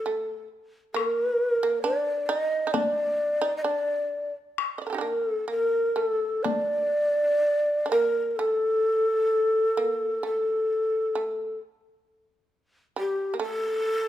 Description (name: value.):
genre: japanese traditional, Japanese chamber music.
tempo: 65 BPM.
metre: 4/4.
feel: uneven beats, rubato.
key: D miyako bushi.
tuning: A4 = 440 Hz.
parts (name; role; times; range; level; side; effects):
breathy mellow shakuhachi; melody; 0.0-14.1 s; G4 to Eb5; -24 LUFS; equal; none.
shamisen; second line; 0.1-14.1 s; G3 to Eb5; -32 LUFS; right 5 dB; none.
solo taiko drums; percussion; 1.0-6.7 s; none; -31 LUFS; left 7 dB; none.
room: light reverb.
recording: minimal, uncompressed stereo recording.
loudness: -23 LUFS.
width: side -12 dB against mid.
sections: 0.0-8.4 A section; 8.4-14.1 B section.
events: none.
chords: none.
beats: 0.05 | 0.94 1.83 2.72 3.64 | 4.56 5.48 6.44 7.42 | 8.38 9.32 10.24 11.16 | 12.07 12.98 13.87.